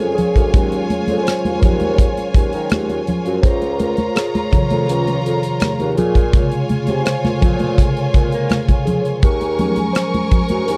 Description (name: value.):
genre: lush 1970s-style soul.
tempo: 83 BPM.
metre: 4/4.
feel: straight.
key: Eb dorian.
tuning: A4 = 443 Hz.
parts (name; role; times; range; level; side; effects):
warm studio string section; second line; 0.0-10.8 s; F4 to Db6; -26 LUFS; equal; none.
mellow tine electric piano; accompaniment; 0.0-10.8 s; C3 to Db5; -23 LUFS; equal; phaser.
dark bassoon; bass; 0.0-10.8 s; Db2 to Bb3; -24 LUFS; equal; none.
modern studio drum kit; drums; 0.0-10.8 s; hi-hat, kick drum, rim click; -17 LUFS; equal; none.
congas; percussion; 0.0-10.8 s; none; -24 LUFS; equal; none.
room: little or no reverb.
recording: dry, close 1970s-style studio recording.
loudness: -17 LUFS.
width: mono.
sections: 0.0-10.8 A section.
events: tine electric piano solo 0.0-10.8.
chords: 0.0 Ebm11; 3.4 Dbmaj7; 6.0 Bbm7; 9.2 Ebm11.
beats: | 0.54 1.26 1.99 2.71 | 3.43 4.16 4.88 5.61 | 6.33 7.06 7.78 8.51 | 9.23 9.96 10.68.